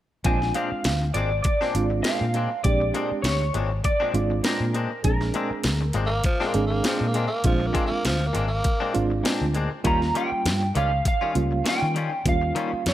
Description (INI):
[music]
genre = straight-eighth soul blues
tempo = 100 BPM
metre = 4/4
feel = swing 54% on 16ths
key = Bb mixolydian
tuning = A4 = 441 Hz
[part]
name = direct-recorded clean electric guitar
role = stabs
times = 0.2-12.8 s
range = Bb2 to F4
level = -31 LUFS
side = left 6 dB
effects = lush chorus, slapback echo
[part]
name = vintage muted fingered electric bass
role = bass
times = 0.2-12.9 s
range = Ab1 to Eb3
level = -25 LUFS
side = equal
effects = none
[part]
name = drum and bass drum kit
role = drums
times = 0.2-12.9 s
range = hi-hat, kick drum, snare drum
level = -26 LUFS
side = equal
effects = none
[part]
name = electric guitar through a small old amp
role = melody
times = 0.3-6.2, 9.9-12.9 s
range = Bb4 to Bb5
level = -27 LUFS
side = right 1 dB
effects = analog chorus
[part]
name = reed electric piano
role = accompaniment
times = 0.3-12.9 s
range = G3 to Ab4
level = -28 LUFS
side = right 4 dB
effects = fast tremolo
[part]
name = breathy tenor saxophone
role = second line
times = 6.1-9.0 s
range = F3 to Bb3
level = -28 LUFS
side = right 1 dB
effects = none
[sound]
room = digital ambience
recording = none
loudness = -21 LUFS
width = side -13 dB against mid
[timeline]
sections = 0.3-12.9 A section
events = none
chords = 0.3 Bb9; 9.8 Eb9